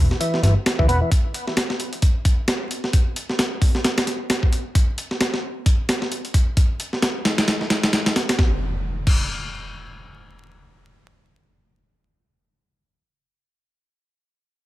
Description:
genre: breakbeat, breaks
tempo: 132 BPM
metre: 4/4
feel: swing 58% on 16ths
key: E minor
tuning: A4 = 440 Hz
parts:
  - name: overdriven picked electric bass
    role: bass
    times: 0.0-1.0 s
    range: E1 to D2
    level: -18 LUFS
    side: equal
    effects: none
  - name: breakbeat sampler-style drum kit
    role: drums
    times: 0.1-9.2 s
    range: crash cymbal, hi-hat, kick drum, snare drum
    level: -19 LUFS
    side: equal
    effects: none
  - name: overdriven tonewheel organ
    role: riff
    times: 0.2-1.1 s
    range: E3 to B3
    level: -25 LUFS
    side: equal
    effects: chorus vibrato, slow rotary speaker, low-pass filter, digital delay
  - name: impact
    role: sound effects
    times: 8.4-12.9 s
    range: none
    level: -28 LUFS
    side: equal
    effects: none
room: little or no reverb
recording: vinyl crackle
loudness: -18 LUFS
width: side -16 dB against mid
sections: 0.0-8.4 A section; 8.4-12.0 B section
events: none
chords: 0.0 E5; 1.1 N.C.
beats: 0.20 0.66 | 1.11 1.57 2.02 2.48 | 2.93 3.38 3.84 4.29 | 4.75 5.20 5.66 6.11 | 6.57 7.02 7.48 7.93 | 8.38 8.84 9.29 9.75 | 10.20 10.66 11.11 11.57

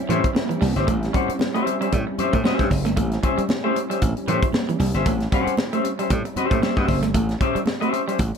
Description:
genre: funk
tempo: 115 BPM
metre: 4/4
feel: swing 56% on 16ths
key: unclear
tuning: A4 = 441 Hz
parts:
  - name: soft string machine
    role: sustained chords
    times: 0.0-8.4 s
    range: G3 to E4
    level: -30 LUFS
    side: equal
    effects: ensemble chorus
  - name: clean electric guitar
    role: accompaniment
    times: 0.1-8.2 s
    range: C#4 to F#5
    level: -24 LUFS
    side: left 4 dB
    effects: none
  - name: electric guitar at the edge of break-up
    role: riff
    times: 0.1-8.1 s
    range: E3 to A3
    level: -28 LUFS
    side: right 4 dB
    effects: spring reverb
  - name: slap bass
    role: bass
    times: 0.1-8.3 s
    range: F#1 to A2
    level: -23 LUFS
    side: equal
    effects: none
  - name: tight funk drum kit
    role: drums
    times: 0.1-8.4 s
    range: hi-hat, kick drum, snare drum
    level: -24 LUFS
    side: equal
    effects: none
  - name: congas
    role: percussion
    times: 0.1-8.3 s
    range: none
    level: -31 LUFS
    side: right 4 dB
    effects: none
room: light reverb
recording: none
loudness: -19 LUFS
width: side -6 dB against mid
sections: 0.0-8.4 A section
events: none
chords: 0.0 A7#9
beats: 0.36 | 0.88 1.40 1.93 2.45 | 2.97 3.50 4.02 4.54 | 5.06 5.58 6.11 6.63 | 7.15 7.67 8.19

